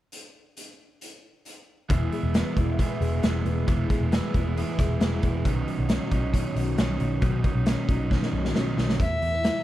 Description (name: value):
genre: jangly indie pop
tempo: 135 BPM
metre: 4/4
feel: straight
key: E major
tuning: A4 = 440 Hz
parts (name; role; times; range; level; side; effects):
- raw garage drum kit; drums; 0.1-9.5 s; hi-hat, kick drum, snare drum; -26 LUFS; equal; none
- crunchy overdriven guitar; accompaniment; 1.9-9.0 s; B2 to E4; -31 LUFS; right 6 dB; none
- direct-recorded clean electric guitar; arpeggios; 1.9-9.6 s; B2 to E4; -32 LUFS; left 5 dB; ensemble chorus, slapback echo
- vintage muted picked electric bass; bass; 1.9-9.5 s; E1 to E2; -27 LUFS; equal; none
- warm violin; melody; 9.0-9.6 s; E5; -26 LUFS; left 1 dB; slapback echo
room: light reverb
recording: none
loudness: -22 LUFS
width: side -14 dB against mid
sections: 0.1-1.9 A section; 1.9-9.0 B section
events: drum fill 8.1-9.0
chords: 0.1 N.C.; 1.9 E; 5.5 Badd9; 9.0 E5